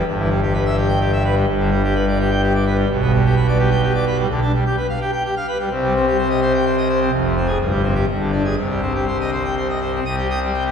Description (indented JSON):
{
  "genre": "classical, organ toccata",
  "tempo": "127 BPM",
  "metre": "3/4",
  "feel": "straight",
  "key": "C minor from 4.3 s",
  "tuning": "A4 = 440 Hz",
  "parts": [
    { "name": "pipe organ, full organ", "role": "solo", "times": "0.0-10.7 s", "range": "F1 to Eb6", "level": "-16 LUFS", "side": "equal", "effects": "none" }
  ],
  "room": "wet church reverb, RT60 3.8 s",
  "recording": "heard from further back in the room",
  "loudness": "-16 LUFS",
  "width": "side -7 dB against mid",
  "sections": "0.0-10.0 A section",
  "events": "none",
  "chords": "0.1 Em/G; 1.5 G; 2.9 G/B; 4.3 G7/D; 5.7 Cm; 7.1 Fm; 7.6 C5/G; 8.1 G5; 8.6 Cm"
}